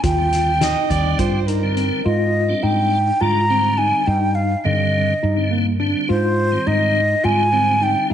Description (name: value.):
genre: progressive instrumental, band music in an uneven meter.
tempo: 208 BPM (eighths).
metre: 7/8.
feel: straight.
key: unclear.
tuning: A4 = 440 Hz.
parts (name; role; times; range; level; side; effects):
breathy hollow jazz flute; melody; 0.0-8.1 s; C5 to Bb5; -19 LUFS; right 1 dB; none.
mellow tine electric piano; arpeggios; 0.0-8.1 s; D3 to F4; -23 LUFS; left 1 dB; medium stereo tremolo, slapback echo.
woody fretless electric bass; bass; 0.0-8.1 s; Eb2 to Ab2; -20 LUFS; equal; analog chorus.
soft-mallet drum kit; drums; 0.0-1.9 s; hi-hat, kick drum, snare drum; -25 LUFS; left 2 dB; none.
tonewheel organ; accompaniment; 0.2-8.1 s; D3 to D4; -26 LUFS; equal; chorus vibrato, slow rotary speaker.
dark viola; second line; 0.6-2.1 s; Bb4 to Eb5; -26 LUFS; right 7 dB; none.
room: moderate echo chamber reverb, RT60 1.8 s, small room ambience.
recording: 1960s-style stereo, nothing above 10.5 kHz, faint mains hum.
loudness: -16 LUFS.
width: side -9 dB against mid.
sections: 0.0-2.1 A section; 2.1-8.1 B section.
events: none.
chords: 0.0 Eb6; 2.1 Abmaj7; 4.1 Ebmaj7/G; 6.1 Abmaj7.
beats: | 0.04 0.33 0.62 0.91 1.19 1.48 1.77 | 2.06 2.35 2.63 2.92 3.21 3.50 3.79 | 4.08 4.36 4.65 4.94 5.23 5.52 5.80 | 6.09 6.38 6.67 6.96 7.24 7.53 7.82 | 8.11.